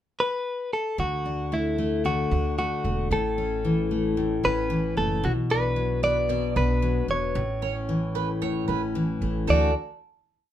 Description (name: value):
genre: acoustic pop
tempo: 113 BPM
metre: 4/4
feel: straight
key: D major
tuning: A4 = 438 Hz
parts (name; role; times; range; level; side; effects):
- direct-recorded clean electric guitar; melody; 0.2-9.7 s; E4 to D5; -27 LUFS; equal; none
- picked steel-string acoustic guitar; accompaniment; 1.0-9.7 s; A2 to F#4; -27 LUFS; left 3 dB; none
- upright bass; bass; 1.0-9.7 s; E1 to D2; -29 LUFS; right 1 dB; none
- mandolin; arpeggios; 5.5-9.7 s; A4 to D5; -32 LUFS; right 8 dB; none
room: moderate studio reverb, RT60 0.6 s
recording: minimal, uncompressed stereo recording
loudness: -23 LUFS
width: side -11 dB against mid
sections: 0.0-1.0 pickup bar; 1.0-9.5 verse; 9.5-10.5 final chord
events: none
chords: 0.0 N.C.; 1.0 D; 3.1 A; 5.2 Bm; 7.4 A; 9.5 D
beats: 0.45 | 0.99 1.52 2.05 2.58 | 3.12 3.65 4.18 4.71 | 5.24 5.77 6.30 6.83 | 7.36 7.89 8.42 8.95 | 9.48